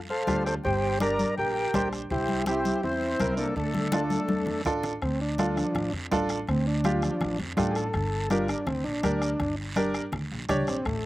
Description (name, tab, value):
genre	latin, cumbia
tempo	164 BPM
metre	4/4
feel	straight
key	D minor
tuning	A4 = 441 Hz
part	upright bass	bass	0.0-11.1 s	G1 to F2	-32 LUFS	equal	none
part	overdriven combo organ	melody	0.1-11.1 s	F3 to D5	-29 LUFS	equal	slapback echo
part	accordion	second line	0.1-4.6 s	A4 to Bb5	-34 LUFS	left 3 dB	slapback echo
part	congas	percussion	0.1-11.0 s	none	-31 LUFS	left 2 dB	none
part	bright upright piano	accompaniment	0.3-10.8 s	C4 to C#5	-30 LUFS	right 2 dB	none
part	bombo	percussion	0.3-11.0 s	none	-36 LUFS	left 1 dB	none
part	guiro	percussion	0.3-11.1 s	none	-41 LUFS	right 3 dB	none
room	little or no reverb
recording	recorded outdoors, with no room sound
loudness	-25 LUFS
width	side -16 dB against mid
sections	0.0-5.0 A section; 5.0-11.1 B section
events	drum fill 4.3-5.0; transistor combo organ solo 5.0-11.1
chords	0.0 Dm; 0.6 Gm; 2.1 C; 3.6 Dm; 7.9 Gm